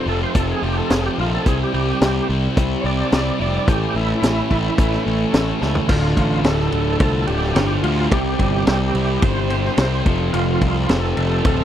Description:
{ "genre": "classic rock", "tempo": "108 BPM", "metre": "4/4", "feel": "straight", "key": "D minor", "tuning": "A4 = 440 Hz", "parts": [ { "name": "overdriven tonewheel organ", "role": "melody", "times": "0.0-11.6 s", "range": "E4 to D5", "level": "-24 LUFS", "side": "right 2 dB", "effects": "slow rotary speaker, chorus vibrato, slapback echo" }, { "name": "warm grand piano", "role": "accompaniment", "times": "0.0-11.6 s", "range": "C4 to C5", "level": "-29 LUFS", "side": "left 6 dB", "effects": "none" }, { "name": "bright tonewheel organ", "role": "sustained chords", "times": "0.0-11.6 s", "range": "G3 to A4", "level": "-34 LUFS", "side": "equal", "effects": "none" }, { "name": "cranked stack guitar", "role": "riff", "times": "0.0-11.6 s", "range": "D2 to C5", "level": "-26 LUFS", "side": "right 10 dB", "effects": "overdrive" }, { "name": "tight distorted guitar", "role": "riff", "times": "0.0-11.6 s", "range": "D2 to C4", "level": "-27 LUFS", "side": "left 10 dB", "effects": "distortion" }, { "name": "fuzz picked electric bass", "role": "bass", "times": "0.1-11.6 s", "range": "D1 to D2", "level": "-22 LUFS", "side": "equal", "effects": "overdrive" }, { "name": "vintage drum kit", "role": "drums", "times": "0.3-11.6 s", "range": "crash cymbal, hi-hat, kick drum, ride cymbal, snare drum, toms", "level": "-20 LUFS", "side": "equal", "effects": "none" }, { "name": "sludgy distorted guitar", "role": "riff", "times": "5.9-11.6 s", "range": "D2 to C4", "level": "-26 LUFS", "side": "equal", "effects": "none" } ], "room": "small room ambience", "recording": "dry, close 1970s-style studio recording", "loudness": "-16 LUFS", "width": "side -10 dB against mid", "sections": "0.0-5.9 A section; 5.9-11.6 B section", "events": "tonewheel organ solo 0.0-5.9; drum fill 5.6", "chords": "0.0 F; 1.5 C; 3.7 A; 5.9 Dm; 8.1 C; 10.1 F" }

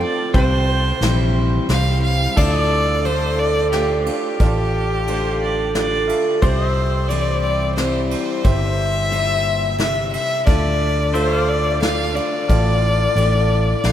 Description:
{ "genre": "honky-tonk and classic country", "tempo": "89 BPM", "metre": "3/4", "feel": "straight", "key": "D minor", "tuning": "A4 = 440 Hz", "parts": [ { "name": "bright fiddle", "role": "second line", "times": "0.0-1.7, 5.1-6.2 s", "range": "C5 to D5", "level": "-29 LUFS", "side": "right 3 dB", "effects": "none" }, { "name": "bright upright piano", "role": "accompaniment", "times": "0.0-13.9 s", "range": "C4 to E5", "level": "-30 LUFS", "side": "right 3 dB", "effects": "none" }, { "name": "picked steel-string acoustic guitar", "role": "accompaniment", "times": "0.0-13.9 s", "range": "G2 to F4", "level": "-23 LUFS", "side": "equal", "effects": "none" }, { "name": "pedal steel guitar", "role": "sustained chords", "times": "0.0-13.9 s", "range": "A4 to G5", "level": "-30 LUFS", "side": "left 1 dB", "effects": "lush chorus" }, { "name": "fingered electric bass", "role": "bass", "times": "0.0-13.9 s", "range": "G1 to D2", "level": "-20 LUFS", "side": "equal", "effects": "none" }, { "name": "soft brush drum kit", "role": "drums", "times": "0.3-13.9 s", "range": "crash cymbal, kick drum, ride cymbal, snare drum", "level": "-24 LUFS", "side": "equal", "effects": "none" }, { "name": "clear violin", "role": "melody", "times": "1.7-13.9 s", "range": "G4 to F5", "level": "-21 LUFS", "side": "left 2 dB", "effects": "none" } ], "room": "wet cathedral reverb, RT60 6.1 s", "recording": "in a vast, echoing space", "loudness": "-16 LUFS", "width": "side -10 dB against mid", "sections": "0.0-2.4 A section; 2.4-13.9 B section", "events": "fiddle solo 0.0-2.4", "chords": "0.3 C; 2.4 Dm; 6.4 C; 10.5 Dm" }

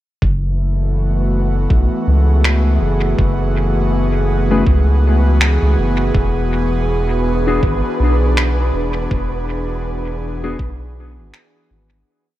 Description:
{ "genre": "ambient dub", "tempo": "81 BPM", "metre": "4/4", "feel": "swing 57% on 16ths", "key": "F# minor", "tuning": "A4 = 440 Hz", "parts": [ { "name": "airy breathy pad", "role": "sustained chords", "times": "0.5-12.1 s", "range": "E3 to G#4", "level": "-20 LUFS", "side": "equal", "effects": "chorus" }, { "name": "round analog bass", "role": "bass", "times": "0.2-12.0 s", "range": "E1 to C#2", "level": "-16 LUFS", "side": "equal", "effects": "tube saturation" }, { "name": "electronic kick drum", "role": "drums", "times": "0.2-10.8 s", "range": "none", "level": "-18 LUFS", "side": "equal", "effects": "none" }, { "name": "electronic finger snaps", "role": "drums", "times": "2.4-11.5 s", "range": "none", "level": "-21 LUFS", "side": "equal", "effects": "dub echo" }, { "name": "mellow electric guitar", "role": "stabs", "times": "4.5-10.6 s", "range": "A3 to B4", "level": "-22 LUFS", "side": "left 3 dB", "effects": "analog chorus, dub echo" }, { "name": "wind-like tuned noise texture", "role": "texture", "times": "6.7-12.1 s", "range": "B4", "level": "-27 LUFS", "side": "right 2 dB", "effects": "built-in reverb" } ], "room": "light reverb, digital ambience", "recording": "none", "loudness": "-14 LUFS", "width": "side -14 dB against mid", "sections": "0.2-12.1 groove", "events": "fade-out 8.1-12.1", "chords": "0.2 F#m11; 6.2 E9" }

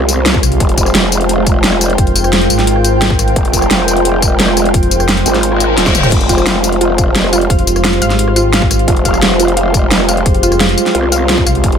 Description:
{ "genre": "dark technical drum and bass", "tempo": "174 BPM", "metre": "4/4", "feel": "straight", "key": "F minor", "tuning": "A4 = 440 Hz", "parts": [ { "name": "deep dark ambient pad", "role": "sustained chords", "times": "0.0-11.8 s", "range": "Ab3 to Bb4", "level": "-18 LUFS", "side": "right 3 dB", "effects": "chorus, built-in reverb, sidechain pumping" }, { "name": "growl bass", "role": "bass", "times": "0.0-11.8 s", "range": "Eb1 to C2", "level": "-16 LUFS", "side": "equal", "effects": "chorus, tube saturation" }, { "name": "dubstep drum kit", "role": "drums", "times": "0.0-11.8 s", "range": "crash cymbal, hi-hat, rim click, snare drum, tambourine, toms", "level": "-14 LUFS", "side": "equal", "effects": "none" }, { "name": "airy breathy pad", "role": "texture", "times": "0.0-11.8 s", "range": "F4 to G5", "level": "-17 LUFS", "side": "left 1 dB", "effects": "chorus, sidechain pumping" }, { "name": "electronic kick drum", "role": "drums", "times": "0.3-11.7 s", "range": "none", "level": "-14 LUFS", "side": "equal", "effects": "none" }, { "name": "growling FM bass", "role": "bass", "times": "0.4-5.2, 7.5-11.6 s", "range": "F1 to C2", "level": "-16 LUFS", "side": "equal", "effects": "none" }, { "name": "reverse cymbal", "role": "sound effects", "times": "5.6-6.1 s", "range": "none", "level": "-19 LUFS", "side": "left 3 dB", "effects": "none" }, { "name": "warbly dusty pluck", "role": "arpeggios", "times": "6.3-11.5 s", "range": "F4 to F5", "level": "-18 LUFS", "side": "right 1 dB", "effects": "chorus, sidechain pumping, dub echo" } ], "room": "light reverb, digital ambience", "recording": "none", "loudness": "-9 LUFS", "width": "side -8 dB against mid", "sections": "0.0-11.8 A section", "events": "reverse cymbal 5.6-6.1; drum fill 5.8-6.1", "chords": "0.0 Fmadd9" }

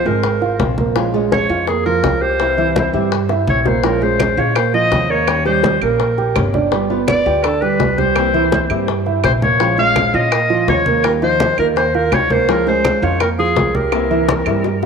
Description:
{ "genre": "latin, Cuban son and guajira", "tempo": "166 BPM", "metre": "4/4", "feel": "straight", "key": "unclear", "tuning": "A4 = 440 Hz", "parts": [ { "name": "clear clarinet", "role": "melody", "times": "0.0-14.9 s", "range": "Ab4 to F5", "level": "-17 LUFS", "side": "left 1 dB", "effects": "none" }, { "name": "flamenco guitar", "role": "accompaniment", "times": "0.0-14.7 s", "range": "C3 to Bb4", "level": "-24 LUFS", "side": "left 12 dB", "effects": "none" }, { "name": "dark concert grand piano", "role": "arpeggios", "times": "0.1-14.9 s", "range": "E3 to G5", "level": "-19 LUFS", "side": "right 10 dB", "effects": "none" }, { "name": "upright bass", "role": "bass", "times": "0.1-14.9 s", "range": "G1 to Bb2", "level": "-22 LUFS", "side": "equal", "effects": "none" }, { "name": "congas", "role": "percussion", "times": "0.1-14.9 s", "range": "none", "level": "-23 LUFS", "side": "equal", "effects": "none" }, { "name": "bongos", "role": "percussion", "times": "0.2-14.9 s", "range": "none", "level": "-23 LUFS", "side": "left 12 dB", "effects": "none" }, { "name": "claves", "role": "percussion", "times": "4.2-14.6 s", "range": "none", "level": "-29 LUFS", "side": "right 11 dB", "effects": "none" } ], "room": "moderate plate reverb, RT60 2.8 s", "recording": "1960s-style stereo with parts hard left and right", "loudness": "-13 LUFS", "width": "side -6 dB against mid", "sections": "0.0-14.9 A section", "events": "drum fill 3.3-3.8, 13.9-14.9", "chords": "0.0 Dbmaj7 (rootless); 1.0 Bbm7; 2.4 C; 3.8 Bbm7; 5.3 Eb7; 6.7 G7; 8.2 C7; 9.6 Bbm7; 11.0 Ebadd9; 12.5 Bbm7/Db; 13.9 C7" }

